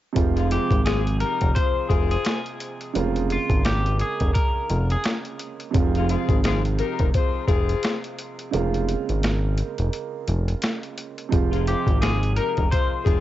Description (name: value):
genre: hip hop, boom-bap hip-hop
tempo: 86 BPM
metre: 4/4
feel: swing 59% on 16ths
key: F minor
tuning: A4 = 439 Hz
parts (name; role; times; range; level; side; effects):
- warm upright piano; accompaniment; 0.1-13.2 s; C3 to F4; -29 LUFS; right 8 dB; cassette tape, high-pass filter, low-pass filter
- fat analog bass; bass; 0.2-13.2 s; F1 to Ab1; -23 LUFS; equal; none
- boom bap sampler-style drum kit; drums; 0.2-13.2 s; hi-hat, kick drum, snare drum; -24 LUFS; equal; overdrive, cassette tape
- mellow saxophone section; stabs; 0.4-13.2 s; Ab3 to C5; -28 LUFS; left 9 dB; high-pass filter, low-pass filter, cassette tape, tape echo
- semi-hollow electric guitar; melody; 0.5-5.0, 11.7-13.2 s; F4 to C5; -29 LUFS; left 1 dB; high-pass filter, low-pass filter, cassette tape
room: digital ambience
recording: home recording on cassette, nothing above 7.8 kHz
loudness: -20 LUFS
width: side -14 dB against mid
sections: 0.2-13.2 A section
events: break 8.5-11.3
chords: 0.2 Fm; 3.0 Bbm7/F; 5.7 Fm; 8.5 Bbm7/F; 11.3 Fm